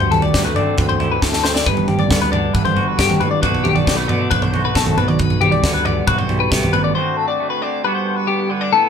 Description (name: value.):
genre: math rock and midwest emo.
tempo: 136 BPM.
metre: 4/4.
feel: straight.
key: G major.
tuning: A4 = 440 Hz.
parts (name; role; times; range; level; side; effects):
electric guitar through a small old amp; accompaniment; 0.0-8.9 s; D2 to F#4; -22 LUFS; right 5 dB; none.
twelve-string electric guitar; arpeggios; 0.0-8.9 s; G4 to D5; -19 LUFS; left 8 dB; none.
modern bright fingered electric bass; bass; 0.0-6.9 s; G1 to D3; -23 LUFS; equal; none.
crisp fusion drum kit; drums; 0.0-6.8 s; kick drum, snare drum, toms; -18 LUFS; right 2 dB; none.
room: moderate studio reverb, RT60 0.5 s.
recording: band playing live in one room.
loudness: -15 LUFS.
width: side -7 dB against mid.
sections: 0.0-8.7 A section.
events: drum fill 1.2-1.7; break 7.0-8.7.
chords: 0.0 D5; 1.7 Gmaj7; 3.4 Bm7; 5.0 Gmaj7/B; 7.0 D7; 7.8 Gmaj7.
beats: 0.34 0.78 1.22 | 1.66 2.10 2.54 2.99 | 3.43 3.87 4.31 4.75 | 5.19 5.63 6.07 6.51 | 6.95 7.39 7.83 8.27 | 8.71.